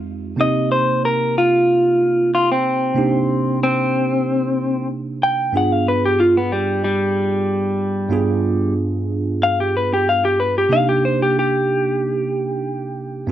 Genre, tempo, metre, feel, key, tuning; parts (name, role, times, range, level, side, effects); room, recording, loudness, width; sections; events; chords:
blues; 93 BPM; 4/4; straight; C minor; A4 = 440 Hz
bell-like tine electric piano; accompaniment; 0.0-13.3 s; F2 to Ab4; -21 LUFS; right 3 dB; lush chorus
electric guitar through a small old amp; melody; 0.4-13.3 s; G3 to G5; -17 LUFS; left 1 dB
digital ambience; dry, close 1970s-style studio recording; -16 LUFS; side -11 dB against mid
0.0-13.3 A section
clean electric guitar solo 0.0-13.3
0.4 Cm7; 5.5 G7b9; 10.7 Cm7